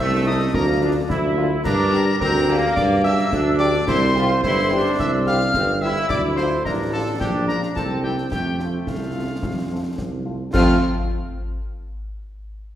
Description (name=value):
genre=military-style march for wind band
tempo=108 BPM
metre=2/4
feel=straight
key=F major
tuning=A4 = 440 Hz
part: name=mellow cornet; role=melody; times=0.0-10.8 s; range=F4 to F5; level=-27 LUFS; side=equal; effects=none
part: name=bright piccolo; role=second line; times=0.0-10.8 s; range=F5 to F6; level=-26 LUFS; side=left 2 dB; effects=none
part: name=clear trombone section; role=sustained chords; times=0.0-10.8 s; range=A3 to F4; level=-26 LUFS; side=equal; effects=none
part: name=dark tuba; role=bass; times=0.0-10.8 s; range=G1 to G2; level=-21 LUFS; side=right 1 dB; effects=none
part: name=mellow French horn section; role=accompaniment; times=0.3-10.8 s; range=A3 to G4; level=-29 LUFS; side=left 2 dB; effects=none
part: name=concert snare drum, concert bass drum and clash cymbals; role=drums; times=0.5-10.8 s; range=none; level=-28 LUFS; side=left 1 dB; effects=none
room=wet scoring stage reverb, RT60 1.7 s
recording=heard from further back in the room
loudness=-18 LUFS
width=side -11 dB against mid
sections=0.0-10.5 A section; 10.5-11.6 B section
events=none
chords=0.0 Adim/C; 0.5 Bb/D; 1.7 Gm; 3.9 C; 6.1 Dm; 7.2 Gm7/Bb; 7.8 C7; 8.3 F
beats=| 0.54 1.10 | 1.65 2.21 | 2.77 3.32 | 3.88 4.43 | 4.99 5.54 | 6.10 6.65 | 7.21 7.76 | 8.32 8.87 | 9.43 9.98 | 10.54